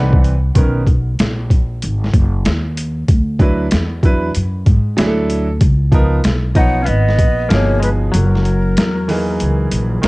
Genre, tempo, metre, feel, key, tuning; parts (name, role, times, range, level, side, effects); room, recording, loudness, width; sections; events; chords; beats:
hip hop, jazz-hop; 95 BPM; 4/4; swing 66% on 16ths; B major; A4 = 440 Hz
breathy mellow jazz flute; melody; 0.0-0.2, 6.6-10.0 s; A#4 to F#5; -22 LUFS; right 1 dB; cassette tape, tape echo
semi-hollow electric guitar; second line; 0.0-0.2, 6.6-10.0 s; F#3 to D#4; -21 LUFS; left 2 dB
clear grand piano; accompaniment; 0.0-10.1 s; B2 to D5; -20 LUFS; right 2 dB
upright bass; bass; 0.0-10.1 s; F#1 to G#2; -16 LUFS; equal
boom bap sampler-style drum kit; drums; 0.1-10.1 s; hi-hat, kick drum, snare drum; -14 LUFS; equal; overdrive, vintage 12-bit sampler grit, cassette tape
studio reverb; home recording on cassette; -12 LUFS; side -22 dB against mid
0.0-10.1 A section
kick muted 8.1-10.1
0.0 Cmaj9; 0.6 Bmaj7; 3.1 D69; 5.6 C#13; 8.1 F#13
| 0.56 1.19 1.82 2.45 | 3.08 3.72 4.35 4.98 | 5.61 6.24 6.88 7.51 | 8.14 8.77 9.40 10.03